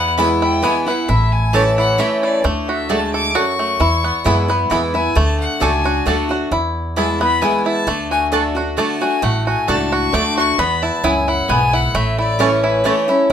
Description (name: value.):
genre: bluegrass.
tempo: 133 BPM.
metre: 3/4.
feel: straight.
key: A major.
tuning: A4 = 440 Hz.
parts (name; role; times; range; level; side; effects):
bluegrass banjo; melody; 0.0-13.3 s; E3 to A4; -20 LUFS; equal; none.
clear fiddle; second line; 0.0-13.2 s; B4 to D6; -21 LUFS; left 3 dB; none.
picked steel-string acoustic guitar; accompaniment; 0.0-13.3 s; E2 to F#4; -20 LUFS; left 1 dB; none.
upright bass; bass; 0.0-13.3 s; A1 to F#2; -21 LUFS; equal; none.
mandolin; stabs; 0.2-12.9 s; A3 to A5; -22 LUFS; right 5 dB; none.
room: moderate studio reverb, RT60 0.5 s.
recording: minimal, uncompressed stereo recording.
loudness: -14 LUFS.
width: side -9 dB against mid.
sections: 0.0-2.4 A section; 2.4-13.3 A section.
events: fiddle solo 0.0-13.3.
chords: 0.0 E; 1.1 A; 2.4 D; 3.8 E; 5.2 D; 6.5 E; 7.9 D; 10.6 E; 11.9 A.